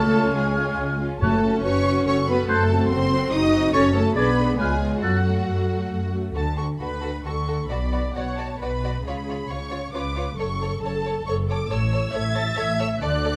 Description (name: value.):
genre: classical, dramatic, fast romantic movement for symphony orchestra.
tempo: 136 BPM.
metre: 3/4.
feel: straight.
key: F# minor.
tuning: A4 = 443 Hz.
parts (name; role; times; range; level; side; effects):
warm symphonic violin section; melody; 0.0-13.4 s; F#5 to A6; -33 LUFS; equal; none.
dark clarinet; second line; 0.0-6.1 s; F#4 to D5; -34 LUFS; equal; none.
small flute group; second line; 0.0-5.2 s; E#6 to A6; -32 LUFS; equal; none.
warm oboe; second line; 0.0-5.2 s; A4 to D5; -31 LUFS; equal; none.
warm symphonic violin section; second line; 0.0-13.3 s; E#4 to D#5; -33 LUFS; equal; none.
dark French horn section; sustained chords; 0.0-6.1 s; F#3 to D#4; -28 LUFS; equal; none.
warm symphonic cello section; bass; 0.0-13.4 s; F#2 to D#4; -31 LUFS; equal; none.
warm symphonic double bass section; bass; 0.0-13.4 s; F#1 to F#2; -29 LUFS; equal; none.
timpani; percussion; 0.0-1.8 s; F#2 to C#3; -34 LUFS; equal; none.
warm symphonic viola section; accompaniment; 0.1-13.4 s; A3 to E5; -32 LUFS; equal; none.
room: light reverb.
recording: close, detailed microphones.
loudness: -23 LUFS.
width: mono.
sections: 0.0-6.4 A section; 6.4-13.4 B section.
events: none.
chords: 0.0 C#; 1.2 F#m; 2.5 F#dim7; 3.7 F#m; 4.2 G#dim/B; 4.6 C#7; 5.0 F#m; 6.4 D6; 7.7 Bm; 9.1 C#7; 10.4 F#m; 11.7 A.